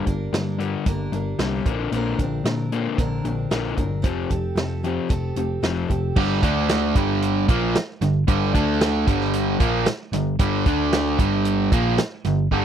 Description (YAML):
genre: classic rock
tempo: 113 BPM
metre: 4/4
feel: straight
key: G minor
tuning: A4 = 439 Hz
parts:
  - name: picked acoustic archtop guitar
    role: accompaniment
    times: 0.0-6.2 s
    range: G2 to Bb4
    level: -31 LUFS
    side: right 4 dB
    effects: none
  - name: overdriven semi-hollow guitar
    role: riff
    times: 0.0-12.6 s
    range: F2 to D4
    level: -24 LUFS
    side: left 8 dB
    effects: none
  - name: hollow-body short-scale picked electric bass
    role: bass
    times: 0.1-12.6 s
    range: F1 to Bb2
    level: -27 LUFS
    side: right 1 dB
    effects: none
  - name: vintage drum kit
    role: drums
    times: 0.1-12.6 s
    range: crash cymbal, hi-hat, kick drum, snare drum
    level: -23 LUFS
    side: right 1 dB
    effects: none
  - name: overdriven semi-hollow guitar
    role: riff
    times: 6.2-12.6 s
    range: G2 to D4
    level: -23 LUFS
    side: right 15 dB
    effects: none
room: little or no reverb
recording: dry, close 1970s-style studio recording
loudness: -20 LUFS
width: side -9 dB against mid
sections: 0.0-6.2 A section; 6.2-12.6 B section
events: none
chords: 0.0 Gm; 1.7 Bbadd9; 4.0 Fadd9; 6.2 G5; 6.4 D5; 7.0 Gm; 8.5 D5; 9.1 Gm; 10.7 D5; 11.2 Gm